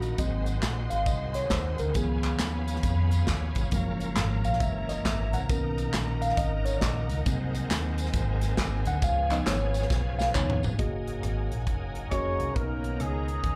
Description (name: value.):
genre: uptempo gospel.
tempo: 136 BPM.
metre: 4/4.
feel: swing 64% on 8ths.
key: F# major.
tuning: A4 = 439 Hz.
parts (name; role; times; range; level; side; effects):
mellow tine electric piano; accompaniment; 0.0-13.3 s; B2 to F#5; -34 LUFS; equal; none.
bright tonewheel organ; sustained chords; 0.0-13.6 s; D#3 to A#4; -41 LUFS; equal; slow rotary speaker, overdrive, chorus vibrato.
warm studio string section; sustained chords; 0.0-13.6 s; B3 to B#5; -43 LUFS; equal; none.
fingered electric bass; bass; 0.0-13.6 s; E#1 to E#2; -32 LUFS; equal; none.
crisp fusion drum kit; drums; 0.0-13.6 s; hi-hat, kick drum, rim click, snare drum, toms; -34 LUFS; equal; none.
tambourine and handclaps; percussion; 0.0-10.7 s; none; -39 LUFS; equal; none.
warm horn section; melody; 12.1-13.6 s; G#3 to C#5; -34 LUFS; equal; slapback echo.
room: studio ambience.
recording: live gig heard through the venue's PA, club reverb.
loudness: -28 LUFS.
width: mono.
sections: 0.0-10.8 A section; 10.8-13.6 B section.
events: tine electric piano solo 0.0-10.8; drum fill 9.9-10.8.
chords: 0.2 G#7; 2.0 C#7; 3.7 F#maj7; 4.6 F#7; 5.5 Bmaj7; 7.3 G#7/B#; 9.0 C#7; 10.8 F#69; 12.6 Bmaj9.